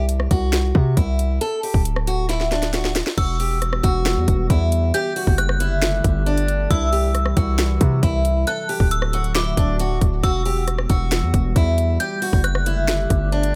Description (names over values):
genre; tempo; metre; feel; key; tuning
hip hop, trap; 136 BPM; 4/4; half-time; E minor; A4 = 440 Hz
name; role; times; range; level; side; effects
picked acoustic archtop guitar; melody; 0.0-13.6 s; D4 to A4; -27 LUFS; equal; tape echo
hard-hitting 808-style bass; bass; 0.0-13.6 s; D1 to C3; -23 LUFS; equal; none
trap drum kit; drums; 0.1-13.5 s; crash cymbal, finger snaps, hi-hat, kick drum, rim click, snare drum; -23 LUFS; equal; none
metallic FM bell; second line; 3.2-13.3 s; D6 to G6; -30 LUFS; equal; chorus, tape echo
dark analog pad; sustained chords; 3.6-13.6 s; C3 to G4; -33 LUFS; equal; chorus, phaser
room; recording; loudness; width
little or no reverb; echo-heavy mix; -20 LUFS; mono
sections
0.0-3.2 A section; 3.2-13.6 B section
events
drum fill 2.3-3.2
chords
0.0 C; 1.4 D; 3.2 Emadd9; 4.9 Gsus2; 6.7 C; 8.5 D; 10.2 Emadd9; 12.0 Gsus2